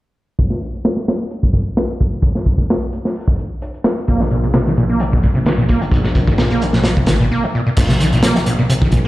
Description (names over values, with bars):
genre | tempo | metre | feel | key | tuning
breakbeat, breaks | 130 BPM | 4/4 | straight | unclear | A4 = 441 Hz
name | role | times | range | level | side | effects
crunchy breakbeat drum kit | drums | 0.4-9.0 s | crash cymbal, hi-hat, kick drum, snare drum | -16 LUFS | equal | none
screaming distorted acid line | riff | 4.1-9.1 s | Bb2 to Bb3 | -16 LUFS | equal | distortion, chorus, digital delay
phased detuned saw bass | bass | 4.1-9.1 s | Ab1 to Bb1 | -19 LUFS | equal | phaser
room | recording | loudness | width
moderate small room ambience, RT60 0.5 s | played on a big sound system in a bare room, stone room reverb, low-pass filter | -14 LUFS | side -17 dB against mid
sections
0.4-7.8 A section; 7.8-9.1 B section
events
filter sweep 0.4-7.8; break 7.3-7.8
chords
0.4 N.C.; 7.8 Bb5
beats
| 0.39 0.85 1.31 1.77 | 2.23 2.69 3.16 3.62 | 4.08 4.54 5.00 5.46 | 5.93 6.39 6.85 7.31 | 7.77 8.23 8.70